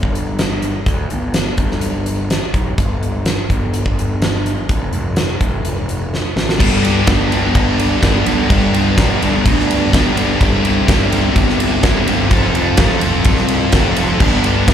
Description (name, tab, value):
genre	quiet-loud alternative rock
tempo	126 BPM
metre	4/4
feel	straight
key	G mixolydian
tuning	A4 = 440 Hz
part	fuzz picked electric bass	bass	0.0-14.7 s	F1 to D2	-19 LUFS	equal	overdrive
part	huge arena drum kit	drums	0.0-14.7 s	crash cymbal, hi-hat, kick drum, ride cymbal, snare drum	-16 LUFS	equal	none
part	thick fuzz guitar	riff	6.6-14.7 s	F3 to A4	-16 LUFS	left 1 dB	distortion, slapback echo
room	light reverb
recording	live gig heard through the venue's PA, club reverb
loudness	-13 LUFS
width	side -9 dB against mid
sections	0.0-6.6 A section; 6.6-14.7 B section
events	drum fill 6.1-6.6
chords	0.0 N.C.; 6.6 G; 10.4 C/G; 12.3 F; 14.2 G